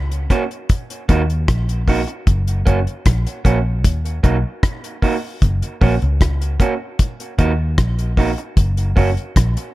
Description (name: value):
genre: roots reggae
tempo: 76 BPM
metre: 4/4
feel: straight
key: F# major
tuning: A4 = 443 Hz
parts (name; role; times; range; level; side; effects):
- vintage muted fingered electric bass; bass; 0.0-9.6 s; F#1 to D#2; -18 LUFS; equal; none
- deep reggae drum kit; drums; 0.1-9.7 s; hi-hat, kick drum, rim click; -16 LUFS; equal; none
- electric guitar through a small old amp; accompaniment; 0.3-9.1 s; A#3 to F#4; -23 LUFS; right 4 dB; dub echo
room: small room ambience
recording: none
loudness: -16 LUFS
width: side -17 dB against mid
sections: 0.0-9.7 A section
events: none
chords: 0.0 F#; 0.7 D#m; 2.3 F#; 3.8 D#m; 5.4 F#; 7.0 D#m; 8.6 F#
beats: 0.69 1.48 | 2.27 3.06 3.84 4.63 | 5.42 6.20 6.99 7.78 | 8.57 9.36